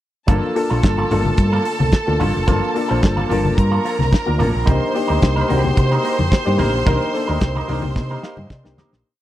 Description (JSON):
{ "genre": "disco", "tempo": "110 BPM", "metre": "4/4", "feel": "straight", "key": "G minor", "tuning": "A4 = 444 Hz", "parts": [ { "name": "clear studio violin section", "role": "second line", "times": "0.3-9.0 s", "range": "A4 to C6", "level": "-24 LUFS", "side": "right 2 dB", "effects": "none" }, { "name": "dark baby grand piano", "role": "accompaniment", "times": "0.3-9.1 s", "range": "A3 to F5", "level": "-23 LUFS", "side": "left 4 dB", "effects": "none" }, { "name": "electric guitar with an envelope filter", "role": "accompaniment", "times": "0.3-9.0 s", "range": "F3 to Bb4", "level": "-26 LUFS", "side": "right 3 dB", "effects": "spring reverb" }, { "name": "hollow-body short-scale fingered electric bass", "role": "bass", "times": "0.3-9.0 s", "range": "F1 to C3", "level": "-20 LUFS", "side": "equal", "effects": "none" }, { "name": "damped 70s drum kit", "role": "drums", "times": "0.3-9.0 s", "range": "hi-hat, kick drum, snare drum", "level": "-17 LUFS", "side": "equal", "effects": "none" }, { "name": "congas", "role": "percussion", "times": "0.3-8.9 s", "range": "none", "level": "-25 LUFS", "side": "left 2 dB", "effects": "none" } ], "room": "little or no reverb", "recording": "dry, close 1970s-style studio recording", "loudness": "-15 LUFS", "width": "side -13 dB against mid", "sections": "0.3-9.0 groove", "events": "fade-out 6.9-9.0; drum fill 8.0-9.0; grand piano fill 8.0-9.0", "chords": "0.3 Gm9; 4.7 Cm7", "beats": "| 0.28 0.83 1.38 1.93 | 2.48 3.03 3.58 4.12 | 4.67 5.22 5.77 6.31 | 6.86 7.41 7.95 8.50" }